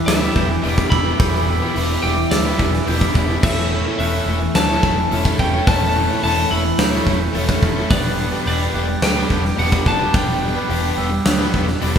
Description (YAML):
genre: post-rock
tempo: 107 BPM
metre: 4/4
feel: straight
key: unclear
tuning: A4 = 440 Hz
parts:
  - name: electric slide guitar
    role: melody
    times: 0.0-11.8 s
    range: D5 to B5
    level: -24 LUFS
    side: left 1 dB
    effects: none
  - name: mellow woodwind section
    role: sustained chords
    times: 0.0-12.0 s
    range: B4 to D6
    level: -35 LUFS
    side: right 1 dB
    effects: none
  - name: clean electric guitar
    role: arpeggios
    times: 0.0-12.0 s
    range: E2 to E4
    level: -32 LUFS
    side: left 1 dB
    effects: none
  - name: glockenspiel with rubber mallets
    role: arpeggios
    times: 0.0-12.0 s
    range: D6 to A6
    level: -30 LUFS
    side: right 4 dB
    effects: none
  - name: overdriven electric guitar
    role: riff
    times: 0.0-12.0 s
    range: E3 to C#5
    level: -23 LUFS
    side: left 5 dB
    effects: none
  - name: overdriven electric guitar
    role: riff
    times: 0.0-12.0 s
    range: G2 to E4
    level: -25 LUFS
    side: right 6 dB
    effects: none
  - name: picked electric bass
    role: bass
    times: 0.1-12.0 s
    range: E1 to D2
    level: -22 LUFS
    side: equal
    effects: none
  - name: big rock drum kit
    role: drums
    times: 0.1-12.0 s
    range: crash cymbal, hi-hat, kick drum, snare drum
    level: -20 LUFS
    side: right 1 dB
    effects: none
room: wet large studio reverb, RT60 1.1 s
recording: band playing live in one room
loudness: -15 LUFS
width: side -8 dB against mid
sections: 0.0-12.0 A section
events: none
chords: 0.0 Em7; 3.4 Aadd9/E